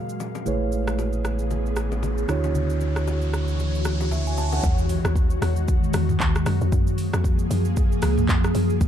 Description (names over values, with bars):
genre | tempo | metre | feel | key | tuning
amapiano | 115 BPM | 4/4 | swing 58% on 16ths | unclear | A4 = 440 Hz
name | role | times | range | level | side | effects
mellow tine electric piano | accompaniment | 0.0-4.8 s | D3 to A5 | -28 LUFS | right 5 dB | low-pass filter
ethereal airy pad | sustained chords | 0.0-8.9 s | A#2 to E#5 | -27 LUFS | left 1 dB | ensemble chorus, built-in reverb, sidechain pumping, low-pass filter
downlifter, riser and impact | sound effects | 1.4-6.7 s | none | -36 LUFS | equal | none
afro-pop drum kit | drums | 0.1-8.9 s | handclaps, hi-hat, kick drum, rim click, shaker, toms | -24 LUFS | equal | none
bongos and congas | percussion | 0.2-4.6 s | none | -35 LUFS | left 8 dB | none
saturated sub bass | bass | 0.5-4.6 s | A1 to D2 | -25 LUFS | equal | none
deep log drum bass | bass | 4.6-8.9 s | A1 to F#2 | -23 LUFS | equal | none
room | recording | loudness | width
little or no reverb | dark, warm production | -20 LUFS | side -9 dB against mid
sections
0.0-4.6 A section; 4.6-8.9 B section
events
riser 1.4-4.6; drop 4.6-8.9; impact 4.6-6.7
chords
0.5 Amaj9; 2.3 Dmaj9; 4.6 Emaj9; 6.5 F#maj9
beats
| 0.46 0.98 1.51 2.03 | 2.55 3.07 3.59 4.12 | 4.64 5.16 5.68 6.20 | 6.72 7.25 7.77 8.29 | 8.81